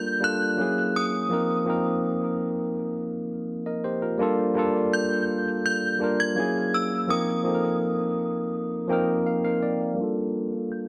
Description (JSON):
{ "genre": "R&B", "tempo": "83 BPM", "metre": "4/4", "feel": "straight", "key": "unclear", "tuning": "A4 = 440 Hz", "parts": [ { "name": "synth chime", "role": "melody", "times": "0.0-10.9 s", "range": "Eb6 to Ab6", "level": "-30 LUFS", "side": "equal", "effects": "ensemble chorus, analog delay" }, { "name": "barky tine electric piano", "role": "accompaniment", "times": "0.0-10.9 s", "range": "F3 to G5", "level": "-27 LUFS", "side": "equal", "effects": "analog delay" } ], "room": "light reverb", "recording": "echo-heavy mix, low-pass filter", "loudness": "-26 LUFS", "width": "mono", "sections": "0.0-10.0 A section", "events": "tine electric piano fill 8.5-10.0", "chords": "0.0 Gm9; 0.6 F#9; 1.3 F7sus4; 4.2 Gm9; 6.4 F#9; 7.1 F7sus4; 10.0 Gm9" }